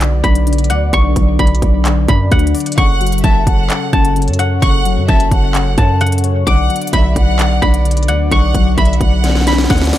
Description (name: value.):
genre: hip hop, trap.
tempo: 130 BPM.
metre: 4/4.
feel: half-time.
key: unclear.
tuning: A4 = 440 Hz.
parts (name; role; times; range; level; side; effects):
guzheng; melody; 0.0-10.0 s; F#5 to D6; -20 LUFS; left 1 dB; low-pass filter.
warbly lo-fi synth keys; accompaniment; 0.0-10.0 s; C#3 to D5; -19 LUFS; left 7 dB; chorus, low-pass filter.
warm French horn section; sustained chords; 0.0-10.0 s; F#3 to D5; -26 LUFS; right 2 dB; none.
hard-hitting 808-style bass; bass; 0.0-9.9 s; F#1 to F#2; -14 LUFS; right 1 dB; none.
trap drum kit; drums; 0.0-10.0 s; handclaps, hi-hat, kick drum, snare drum; -15 LUFS; right 1 dB; none.
warm studio violin section; second line; 2.8-9.7 s; E5 to F#5; -22 LUFS; left 1 dB; tape echo.
room: small room ambience.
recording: none.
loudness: -11 LUFS.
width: side -13 dB against mid.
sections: 0.0-10.0 A section.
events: drum fill 9.2-10.0.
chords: 0.0 Bm; 2.8 F#m; 6.5 Bm.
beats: 0.01 0.47 | 0.93 1.39 1.85 2.31 | 2.78 3.24 3.70 4.16 | 4.62 5.08 5.55 6.01 | 6.47 6.93 7.39 7.85 | 8.31 8.78 9.24 9.70.